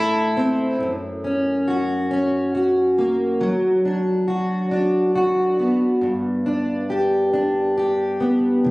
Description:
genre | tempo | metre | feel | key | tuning
pop | 46 BPM (dotted quarters) | 6/8 | straight | G major | A4 = 440 Hz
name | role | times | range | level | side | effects
fingerpicked plugged-in steel-string acoustic guitar | accompaniment | 0.0-8.7 s | F#2 to A4 | -18 LUFS | equal | double-tracked left and right
warm analog pad | sustained chords | 8.6-8.7 s | C3 to E4 | -20 LUFS | equal | lush chorus
room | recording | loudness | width
moderate scoring stage reverb, RT60 1.5 s, small room reverb | recorded on a phone in the room, studio reverb, compression | -18 LUFS | side -21 dB against mid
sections
0.0-8.6 A section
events
none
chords
0.0 Am; 0.8 F#; 3.4 Bm/F#; 6.0 G

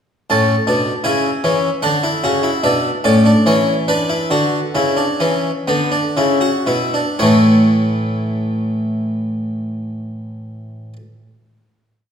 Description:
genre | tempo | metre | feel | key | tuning
classical, baroque-style 3-part fugue for harpsichord | 55-79 BPM | 4/4 | straight | A major | A4 = 440 Hz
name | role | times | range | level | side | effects
harpsichord | solo | 0.3-11.0 s | A2 to A5 | -14 LUFS | equal | none
room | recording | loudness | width
wet recital hall reverb, RT60 1.5 s | recorded in a church or concert hall | -14 LUFS | side -8 dB against mid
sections
0.3-7.2 exposition; 7.2-11.5 final chord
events
slowing down 0.3-9.3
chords
0.3 A; 1.8 D; 3.4 Dmaj13; 5.2 E5; 7.2 A

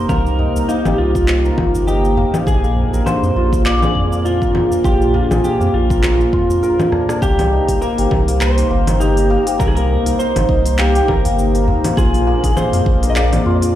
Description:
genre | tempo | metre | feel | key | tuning
organic downtempo | 101 BPM | 4/4 | swing 56% on 16ths | C minor | A4 = 441 Hz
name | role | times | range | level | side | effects
electric slide guitar | melody | 0.0-13.8 s | Eb4 to Eb5 | -19 LUFS | equal | tape echo
airy breathy pad | sustained chords | 0.0-13.8 s | Bb2 to C5 | -22 LUFS | left 1 dB | chorus, sidechain pumping
santur | arpeggios | 0.0-13.8 s | Bb3 to Bb4 | -21 LUFS | left 1 dB | tape echo
warm sub bass | bass | 0.1-13.8 s | G1 to F2 | -17 LUFS | equal | sidechain pumping
electronic kick drum | drums | 0.1-13.0 s | none | -19 LUFS | equal | none
organic electronic drum kit | drums | 0.1-13.7 s | congas, handclaps, hi-hat, rim click, shaker | -22 LUFS | left 1 dB | none
udu | percussion | 0.4-7.1, 11.3-11.8 s | none | -25 LUFS | equal | none
room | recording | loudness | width
light reverb, digital ambience | played on a big sound system in a bare room, large studio reverb | -13 LUFS | side -12 dB against mid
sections
0.0-7.2 A section; 7.2-13.8 B section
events
drum fill 6.9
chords
0.0 Cm7; 2.5 Bb7; 7.2 Cm7; 12.0 Bb7

